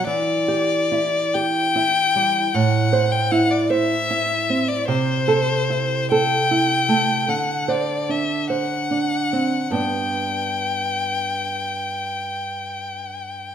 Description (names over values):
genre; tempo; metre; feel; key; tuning
romantic duo for violin and classical guitar; 45-52 BPM (dotted quarters); 12/8; rubato; G major; A4 = 440 Hz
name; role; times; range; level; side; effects
clear violin; melody; 0.0-13.5 s; C5 to G5; -21 LUFS; left 4 dB; none
nylon-string guitar; accompaniment; 0.0-13.5 s; G2 to C5; -22 LUFS; right 3 dB; none
room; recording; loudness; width
moderate recital hall reverb, RT60 1.4 s; minimal, uncompressed stereo recording; -18 LUFS; side -8 dB against mid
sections
0.0-13.5 A section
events
none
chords
0.1 Em7; 2.5 Am; 4.9 Am/C; 7.3 D7; 9.7 G